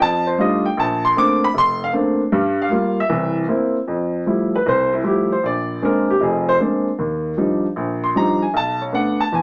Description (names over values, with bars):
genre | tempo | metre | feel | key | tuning
jazz | 154 BPM | 4/4 | swing 67% on 8ths | F major | A4 = 440 Hz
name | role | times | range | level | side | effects
clear baby grand piano | solo | 0.0-9.4 s | F1 to D6 | -19 LUFS | equal | none
room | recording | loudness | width
wet studio ambience, RT60 0.5 s | none | -19 LUFS | mono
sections
0.0-3.9 A section; 3.9-9.4 B section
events
none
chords
0.0 F13; 0.8 Bbmaj9; 2.3 Gm7; 3.1 C7; 3.9 Fmaj9; 5.4 Bb9; 7.0 Ebmaj9; 8.5 Bm7